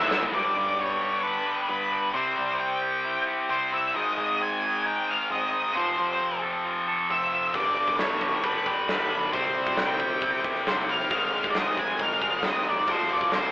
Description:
quiet-loud alternative rock; 134 BPM; 4/4; straight; A4 = 440 Hz
octave-fuzz lead guitar; melody; 0.0-13.5 s; B4 to G#5; -27 LUFS; equal; distortion
scooped high-gain guitar; riff; 0.0-13.5 s; F2 to E4; -28 LUFS; left 2 dB; distortion
big rock drum kit; drums; 0.1-0.3, 7.5-13.4 s; hi-hat, kick drum, snare drum, toms; -30 LUFS; equal
twangy electric guitar; arpeggios; 0.3-13.5 s; G2 to A4; -32 LUFS; right 2 dB; phaser
growling picked electric bass; bass; 0.3-13.5 s; F1 to G2; -41 LUFS; equal; overdrive
moderate large studio reverb, RT60 1.3 s; band playing live in one room, telephone sound; -23 LUFS; side -19 dB against mid
0.3-13.5 A section
drum fill 0.0-0.3
0.3 G; 2.1 C; 4.0 G#; 5.8 F; 7.5 G; 9.3 C; 11.1 G#; 12.9 F5

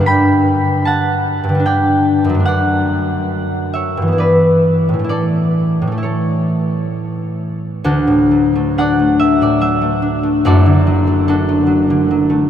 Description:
classical, solo harp piece; 62-77 BPM; 3/4; rubato; D major; A4 = 440 Hz
concert harp; solo; 0.0-12.5 s; F#1 to B5; -12 LUFS; equal
wet huge ambient reverb, RT60 7.4 s; in a vast, echoing space; -12 LUFS; side -10 dB against mid
0.0-7.9 A section; 7.9-12.5 B section
0.1 G; 2.5 D/F#; 4.2 Em/G; 5.1 A; 7.9 D; 10.5 D/F#

